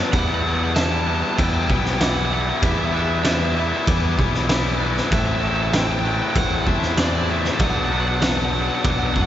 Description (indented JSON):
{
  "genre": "post-rock",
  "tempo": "96 BPM",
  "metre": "4/4",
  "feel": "straight",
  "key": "E minor",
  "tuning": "A4 = 440 Hz",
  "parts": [
    { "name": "glockenspiel with brass mallets", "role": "arpeggios", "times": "0.0-9.3 s", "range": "D6 to F#6", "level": "-32 LUFS", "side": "right 9 dB", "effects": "slapback echo, tape echo" },
    { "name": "distorted electric guitar", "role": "riff", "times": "0.0-9.3 s", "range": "A2 to E4", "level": "-23 LUFS", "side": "left 5 dB", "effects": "overdrive" },
    { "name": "crunchy overdriven guitar", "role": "melody", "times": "0.1-9.3 s", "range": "D5 to A5", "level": "-26 LUFS", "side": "right 4 dB", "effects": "tape echo" },
    { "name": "modern bright picked electric bass", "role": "bass", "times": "0.1-9.3 s", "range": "A1 to F#2", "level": "-24 LUFS", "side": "right 1 dB", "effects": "none" },
    { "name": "oversized low-tuned drum kit", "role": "drums", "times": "0.1-9.3 s", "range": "crash cymbal, kick drum, snare drum", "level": "-22 LUFS", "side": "right 1 dB", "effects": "none" }
  ],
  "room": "moderate lush hall reverb, RT60 3.2 s",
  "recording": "big arena sound, nothing above 7.8 kHz",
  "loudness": "-18 LUFS",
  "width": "side -11 dB against mid",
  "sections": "0.0-9.3 A section",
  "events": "none",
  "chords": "0.1 Em9; 5.1 Am7; 7.6 Bm"
}